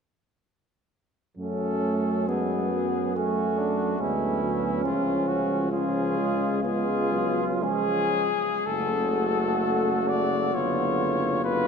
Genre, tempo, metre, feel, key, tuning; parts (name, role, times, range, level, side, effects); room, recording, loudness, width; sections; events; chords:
classical, hymn-like piece for brass band; 54-72 BPM; 4/4; rubato; F# minor; A4 = 436 Hz
clear cornet; melody; 1.4-11.7 s; E4 to D5; -29 LUFS; left 6 dB
mellow flugelhorn; second line; 1.4-11.7 s; B3 to F#4; -29 LUFS; right 5 dB
mellow euphonium; accompaniment; 1.4-11.7 s; G#3 to C#4; -30 LUFS; left 1 dB
mellow trombone; accompaniment; 1.4-11.7 s; C#3 to A3; -32 LUFS; right 2 dB
clear tuba; bass; 1.4-11.7 s; F#1 to F#2; -30 LUFS; left 1 dB
wet cathedral reverb, RT60 6.0 s; minimal, uncompressed stereo recording; -23 LUFS; side -6 dB against mid
1.4-8.7 A section; 8.7-11.7 B section
1.4 F#m; 4.8 C#7; 8.7 F#m; 10.5 C#7b9/F#